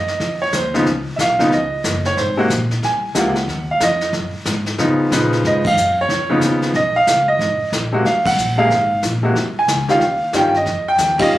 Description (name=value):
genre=jazz piano trio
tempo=184 BPM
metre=4/4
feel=swing 63% on 8ths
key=Ab mixolydian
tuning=A4 = 439 Hz
part: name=bright upright piano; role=melody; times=0.0-11.4 s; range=C3 to Ab5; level=-16 LUFS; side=equal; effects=none
part: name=upright bass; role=bass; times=0.0-11.4 s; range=Gb1 to Db3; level=-24 LUFS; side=equal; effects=none
part: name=jazz brush drum kit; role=drums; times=0.1-11.4 s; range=brushed snare drum, hi-hat, kick drum, ride cymbal, snare drum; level=-23 LUFS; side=left 1 dB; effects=none
room=moderate club reverb, RT60 0.9 s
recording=recorded on a phone in the room, club reverb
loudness=-15 LUFS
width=side -15 dB against mid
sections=0.0-11.4 A section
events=band accent 5.6, 8.2, 11.2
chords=0.0 Ab7 (rootless); 0.9 Db9; 2.2 Ab9; 4.8 Db9; 7.4 Abadd9; 10.0 Eb9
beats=0.20 0.53 | 0.86 1.19 1.51 1.84 | 2.17 2.49 2.82 3.15 | 3.47 3.80 4.13 4.45 | 4.78 5.11 5.43 5.76 | 6.09 6.41 6.74 7.07 | 7.39 7.72 8.05 8.38 | 8.70 9.03 9.36 9.68 | 10.01 10.34 10.66 10.99 | 11.32